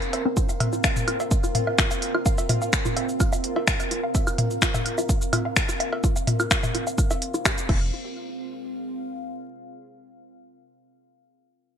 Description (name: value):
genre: minimal techno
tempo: 127 BPM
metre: 4/4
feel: straight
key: F minor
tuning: A4 = 440 Hz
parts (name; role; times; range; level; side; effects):
- minimal click drum kit; drums; 0.0-7.8 s; cabasa, crash cymbal, finger snaps, hi-hat; -26 LUFS; left 2 dB; gated reverb
- deep dark ambient pad; texture; 0.0-9.8 s; C4 to F5; -31 LUFS; right 1 dB; chorus, built-in reverb, sidechain pumping
- pulsing gated texture; texture; 0.0-8.0 s; C4 to C5; -38 LUFS; right 2 dB; chorus, built-in reverb, sidechain pumping
- hollow square pluck; riff; 0.1-7.9 s; C4 to F5; -31 LUFS; left 1 dB; wide subtle chorus, sidechain pumping, ping-pong delay
- electronic cowbell, woodblock and toms; percussion; 0.1-7.8 s; none; -28 LUFS; left 1 dB; gated reverb
- electronic kick drum; drums; 0.4-7.8 s; none; -24 LUFS; equal; none
- rubbery square bass; bass; 7.7-7.9 s; F1; -28 LUFS; equal; sidechain pumping
room: light reverb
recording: bright 1980s-style digital production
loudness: -21 LUFS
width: side -8 dB against mid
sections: 0.0-7.9 A section; 7.9-9.8 B section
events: filter sweep on synth arpeggio sound 0.0-7.9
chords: 0.0 Fsus4; 7.7 Fm